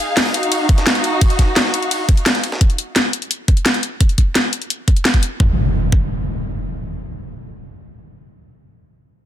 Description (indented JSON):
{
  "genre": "dark technical drum and bass",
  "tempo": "172 BPM",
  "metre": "4/4",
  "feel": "straight",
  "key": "unclear",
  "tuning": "A4 = 439 Hz",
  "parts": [
    { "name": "dark studio string section", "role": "texture", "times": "0.0-2.6 s", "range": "Eb4 to F5", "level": "-20 LUFS", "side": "equal", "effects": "sidechain pumping" },
    { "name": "breakbeat sampler-style drum kit", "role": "drums", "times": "0.2-2.6 s", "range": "hi-hat, ride cymbal, snare drum", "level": "-26 LUFS", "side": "right 2 dB", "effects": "high-pass filter on snare, high-pass filter on cymbals, high-pass filter on hats" },
    { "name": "drum and bass drum kit", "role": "drums", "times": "0.2-5.3 s", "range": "hi-hat, snare drum", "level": "-17 LUFS", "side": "left 1 dB", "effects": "none" },
    { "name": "electronic kick drum", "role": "drums", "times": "0.7-6.0 s", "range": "none", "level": "-13 LUFS", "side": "equal", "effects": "none" },
    { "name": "impact", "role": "sound effects", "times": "5.4-8.6 s", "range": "none", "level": "-21 LUFS", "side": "equal", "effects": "none" }
  ],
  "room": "light reverb",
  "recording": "dense, heavily limited modern master",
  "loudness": "-14 LUFS",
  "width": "side -11 dB against mid",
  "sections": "0.0-5.4 A section; 5.4-8.2 B section",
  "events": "none",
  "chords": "0.0 Ebmadd9; 5.4 N.C."
}